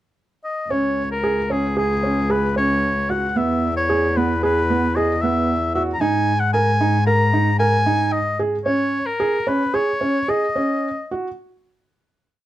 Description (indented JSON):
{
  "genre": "contemporary instrumental, chamber music in an uneven meter",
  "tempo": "113 BPM",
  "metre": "5/4",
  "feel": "straight",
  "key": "C# dorian",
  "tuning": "A4 = 440 Hz",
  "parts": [
    { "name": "clear oboe", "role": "melody", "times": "0.4-11.1 s", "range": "G#4 to A#5", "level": "-21 LUFS", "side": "left 1 dB", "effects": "none" },
    { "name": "felt-muted upright piano", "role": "arpeggios", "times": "0.7-11.3 s", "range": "B3 to A#4", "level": "-21 LUFS", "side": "right 3 dB", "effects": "none" },
    { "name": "dark cello", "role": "bass", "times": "0.7-8.6 s", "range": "C#2 to G#2", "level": "-22 LUFS", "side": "left 1 dB", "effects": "none" }
  ],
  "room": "light reverb",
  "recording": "none",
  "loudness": "-17 LUFS",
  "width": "side -14 dB against mid",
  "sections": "0.0-0.7 pickup bar; 0.7-11.4 A section",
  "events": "slowing down 7.1-11.4",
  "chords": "0.0 N.C.; 0.7 C#5; 3.4 E; 6.0 G#sus2; 8.7 C#sus2"
}